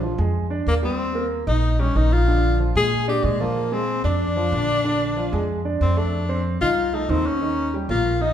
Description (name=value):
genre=jazz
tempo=187 BPM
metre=4/4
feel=straight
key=Bb mixolydian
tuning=A4 = 440 Hz
part: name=breathy tenor saxophone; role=melody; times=0.0-8.3 s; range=G3 to Ab4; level=-23 LUFS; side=left 2 dB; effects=none
part: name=warm grand piano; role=accompaniment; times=0.0-8.3 s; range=D3 to Eb5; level=-26 LUFS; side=right 3 dB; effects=none
part: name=upright bass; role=bass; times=0.0-8.3 s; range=Bb1 to Bb2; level=-23 LUFS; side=equal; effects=none
room=wet large studio reverb, RT60 1.2 s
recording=band playing live in one room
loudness=-19 LUFS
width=side -9 dB against mid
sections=0.0-8.3 A section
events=none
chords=0.0 Bb13; 1.0 Eb6; 2.3 Bb7; 6.1 F6; 7.4 Eb9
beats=0.02 0.34 0.67 | 0.99 1.31 1.63 1.95 | 2.27 2.60 2.92 3.24 | 3.56 3.88 4.20 4.52 | 4.84 5.17 5.49 5.81 | 6.13 6.45 6.77 7.09 | 7.42 7.74 8.06